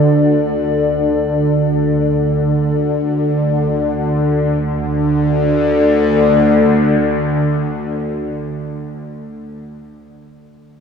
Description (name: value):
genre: dark ambient drone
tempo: free time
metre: none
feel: none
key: unclear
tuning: A4 = 444 Hz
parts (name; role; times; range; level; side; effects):
- dark analog pad; sustained chords; 0.0-9.0 s; D4 to D5; -17 LUFS; left 3 dB; chorus
- bowed-like drone; drone; 0.0-9.1 s; D2 to D3; -16 LUFS; right 1 dB; built-in reverb, phaser
room: wet cathedral reverb, RT60 5.5 s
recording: in a vast, echoing space, studio reverb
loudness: -13 LUFS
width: side -6 dB against mid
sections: 0.0-4.6 A section; 4.6-8.2 B section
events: filter sweep on synth drone 0.0-4.6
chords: 0.0 D5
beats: free time